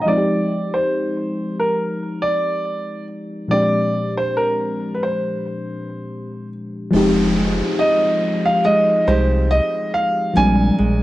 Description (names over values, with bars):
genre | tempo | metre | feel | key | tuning
contemporary R&B | 70 BPM | 4/4 | swing 54% on 16ths | unclear | A4 = 441 Hz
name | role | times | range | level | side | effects
warm grand piano | melody | 0.0-11.0 s | Bb4 to Ab5 | -19 LUFS | right 1 dB | low-pass filter, cassette tape
mellow FM electric piano | accompaniment | 0.0-11.0 s | Bb2 to G4 | -21 LUFS | left 1 dB | chorus, low-pass filter, cassette tape
nylon-string guitar | arpeggios | 6.9-11.0 s | Bb2 to G4 | -26 LUFS | right 3 dB | cassette tape
rubbery square bass | bass | 6.9-11.0 s | F1 to C2 | -20 LUFS | equal | none
downlifter | sound effects | 6.9-11.0 s | none | -31 LUFS | equal | none
room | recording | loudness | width
moderate spring reverb, RT60 1.1 s, studio reverb | home recording on cassette | -16 LUFS | side -16 dB against mid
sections
0.0-6.9 A section; 6.9-11.0 B section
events
filter sweep 0.0-6.9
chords
0.1 Fm9; 3.5 Bb13; 6.9 Fm9; 10.4 Bb13